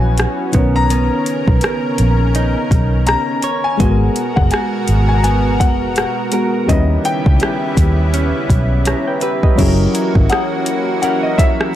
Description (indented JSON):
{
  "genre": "contemporary R&B",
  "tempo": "83 BPM",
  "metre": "4/4",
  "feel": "swing 58% on 16ths",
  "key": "G# minor",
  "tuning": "A4 = 440 Hz",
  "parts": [
    { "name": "clear grand piano", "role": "melody", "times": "0.0-11.7 s", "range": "D#5 to A#5", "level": "-21 LUFS", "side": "left 4 dB", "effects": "ping-pong delay" },
    { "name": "soft electric-piano-like synth keys", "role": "accompaniment", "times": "0.0-11.8 s", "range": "D#3 to A#5", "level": "-20 LUFS", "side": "left 2 dB", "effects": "chorus" },
    { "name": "lush unison pad", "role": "sustained chords", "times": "0.0-11.8 s", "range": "B2 to A#4", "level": "-23 LUFS", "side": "equal", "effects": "chorus, sidechain pumping" },
    { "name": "direct-recorded clean electric guitar", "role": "arpeggios", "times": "0.0-11.8 s", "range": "D#3 to C#5", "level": "-23 LUFS", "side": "right 7 dB", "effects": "spring reverb" },
    { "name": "vintage muted fingered electric bass", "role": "bass", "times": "0.0-10.3 s", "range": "F#1 to D#2", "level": "-15 LUFS", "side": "equal", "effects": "none" },
    { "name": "smooth R&B drum kit", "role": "drums", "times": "0.2-11.7 s", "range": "crash cymbal, hi-hat, kick drum, rim click", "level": "-17 LUFS", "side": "equal", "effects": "none" },
    { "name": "small celesta", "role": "texture", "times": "10.3-11.8 s", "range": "D#6", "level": "-33 LUFS", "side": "left 6 dB", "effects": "ping-pong delay" }
  ],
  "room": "light reverb",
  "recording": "none",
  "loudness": "-13 LUFS",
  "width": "side -12 dB against mid",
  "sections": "0.0-9.6 A section; 9.6-11.8 B section",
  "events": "none",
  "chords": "0.0 C#m7; 0.5 Bmaj9; 3.8 G#m9; 6.7 D#7b9b13; 9.6 F#7",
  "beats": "0.18 | 0.91 1.63 2.35 3.08 | 3.80 4.52 5.24 5.97 | 6.69 7.41 8.14 8.86 | 9.58 10.30 11.03 11.75"
}